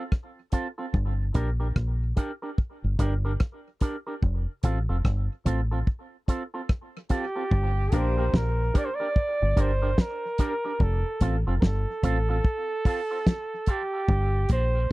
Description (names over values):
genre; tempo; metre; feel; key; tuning
dub reggae; 73 BPM; 4/4; swing 62% on 16ths; G minor; A4 = 440 Hz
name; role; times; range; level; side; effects
electric guitar with an envelope filter; accompaniment; 0.0-14.8 s; C4 to Bb4; -34 LUFS; right 2 dB; high-pass filter, tape echo
damped 70s drum kit; drums; 0.1-14.7 s; hi-hat, kick drum, rim click, snare drum; -23 LUFS; equal; none
deep dub fingered electric bass; bass; 0.9-14.9 s; F1 to Bb1; -25 LUFS; equal; none
warm flugelhorn; melody; 7.1-14.9 s; G4 to D5; -29 LUFS; right 2 dB; tape echo
warm grand piano; stabs; 7.9-8.2 s; Bb3 to Bb4; -33 LUFS; left 5 dB; tape echo
room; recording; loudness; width
little or no reverb; dry, close 1970s-style studio recording; -24 LUFS; side -20 dB against mid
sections
0.0-7.5 A section; 7.5-14.9 B section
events
filter sweep on clean electric guitar 10.8-14.9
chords
0.0 F; 0.9 Gm; 4.2 F; 7.5 Gm; 10.8 F; 14.1 Gm